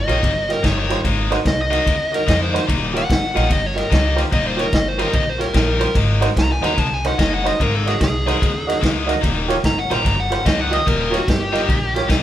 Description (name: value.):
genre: electric blues shuffle.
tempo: 147 BPM.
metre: 4/4.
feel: swing 65% on 8ths.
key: Eb mixolydian.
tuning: A4 = 437 Hz.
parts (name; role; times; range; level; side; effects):
dark smooth lead guitar; melody; 0.0-12.1 s; Gb4 to Bb5; -22 LUFS; left 1 dB; overdrive.
bright upright piano; accompaniment; 0.1-12.0 s; Eb4 to Eb5; -24 LUFS; right 4 dB; none.
cranked stack guitar; riff; 0.1-12.2 s; Eb3 to Eb4; -24 LUFS; left 4 dB; overdrive.
upright bass; bass; 0.1-12.2 s; Eb1 to F2; -23 LUFS; equal; none.
vintage drum kit; drums; 0.1-12.2 s; kick drum, ride cymbal, snare drum; -21 LUFS; equal; none.
room: moderate stone room reverb, RT60 1.4 s.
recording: band playing live in one room.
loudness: -16 LUFS.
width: side -12 dB against mid.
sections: 0.0-12.2 A section.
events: lead electric guitar solo 0.0-12.2.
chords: 0.0 Eb9; 1.0 Ab9; 2.7 Eb9; 6.0 Ab9; 9.2 Eb9.